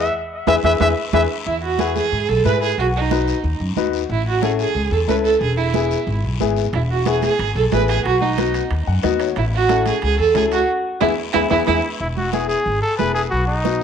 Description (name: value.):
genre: latin, cumbia.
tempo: 182 BPM.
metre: 4/4.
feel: straight.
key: E major.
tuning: A4 = 440 Hz.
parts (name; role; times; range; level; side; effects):
clear trumpet; melody; 0.0-1.2, 12.0-13.8 s; D#4 to E5; -20 LUFS; left 1 dB; tape echo.
warm upright piano; accompaniment; 0.0-13.8 s; B3 to F#5; -23 LUFS; left 9 dB; none.
upright bass; bass; 0.0-13.8 s; E1 to G#2; -22 LUFS; equal; none.
dark violin; second line; 0.5-11.8 s; D#4 to B4; -20 LUFS; right 5 dB; none.
congas; percussion; 0.5-13.8 s; none; -27 LUFS; right 10 dB; none.
guiro; percussion; 0.5-13.8 s; none; -35 LUFS; left 13 dB; none.
timbales; percussion; 0.5-1.2, 6.7-11.7 s; none; -32 LUFS; right 10 dB; none.
room: wet spring reverb, RT60 1.3 s, studio ambience.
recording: 1960s-style stereo with parts hard left and right.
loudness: -16 LUFS.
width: side -7 dB against mid.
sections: 0.0-1.5 A section; 1.5-12.0 B section; 12.0-13.8 C section.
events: band accent 0.1-1.5, 10.7-12.0; drum fill 0.6-1.5, 11.0-12.0; violin solo 1.5-12.0; upright piano fill 8.7-9.4.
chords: 0.0 E; 2.8 B; 4.1 A; 5.4 E; 8.1 B; 9.4 A; 10.7 E; 13.3 B.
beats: | 0.15 0.47 0.80 1.13 | 1.46 1.79 2.12 2.45 | 2.78 3.11 3.44 3.77 | 4.10 4.43 4.76 5.09 | 5.42 5.75 6.08 6.40 | 6.73 7.06 7.39 7.72 | 8.05 8.38 8.71 9.04 | 9.37 9.70 10.03 10.36 | 10.69 11.01 11.34 11.67 | 12.00 12.33 12.66 12.99 | 13.32 13.65.